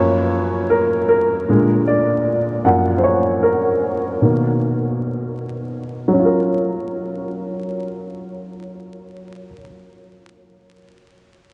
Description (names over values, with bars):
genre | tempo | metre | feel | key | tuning
hip hop | 77 BPM | 4/4 | swing 64% on 16ths | F# major | A4 = 440 Hz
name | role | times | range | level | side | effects
felt-muted upright piano | accompaniment | 0.0-11.5 s | F#2 to F#5 | -19 LUFS | equal | cassette tape, low-pass filter
room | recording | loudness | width
wet huge ambient reverb, RT60 6.6 s | dreamy mix soaked in reverb, vinyl crackle, nothing above 10.7 kHz | -18 LUFS | mono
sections
0.0-6.2 A section; 6.2-9.3 B section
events
felt piano solo 0.0-6.2; filter sweep on felt piano 0.0-6.2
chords
0.0 F#maj7; 1.5 A#7; 2.7 F#maj7; 4.2 Bmaj7; 6.2 F#maj7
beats
0.70 1.48 2.26 | 3.04 3.82 4.60 5.38 | 6.16 6.94 7.72 8.50